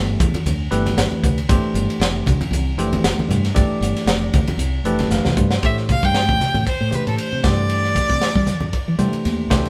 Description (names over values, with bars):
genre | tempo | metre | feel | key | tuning
electric jazz fusion | 116 BPM | 4/4 | swing 54% on 16ths | unclear | A4 = 440 Hz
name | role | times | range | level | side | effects
bell-like tine electric piano | accompaniment | 0.0-9.7 s | E3 to A5 | -25 LUFS | equal | none
woody fretless electric bass | bass | 0.0-9.7 s | F1 to G3 | -24 LUFS | equal | none
tight funk drum kit | drums | 0.2-9.7 s | hi-hat, kick drum, ride cymbal, snare drum | -24 LUFS | equal | none
congas | percussion | 0.2-9.6 s | none | -26 LUFS | equal | none
clear violin | melody | 5.6-9.0 s | A4 to G5 | -24 LUFS | equal | none
room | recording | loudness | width
moderate stone room reverb, RT60 1.1 s | band playing live in one room | -19 LUFS | mono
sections
0.0-5.6 A section; 5.6-9.7 B section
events
tine electric piano fill 4.6-5.6; drum fill 5.1-5.6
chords
0.0 A9sus4; 1.5 G9sus4; 5.6 Am7; 7.4 Gsus24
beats
0.46 0.97 | 1.49 2.01 2.53 3.04 | 3.56 4.08 4.60 5.11 | 5.63 6.15 6.67 7.18 | 7.70 8.22 8.74 9.25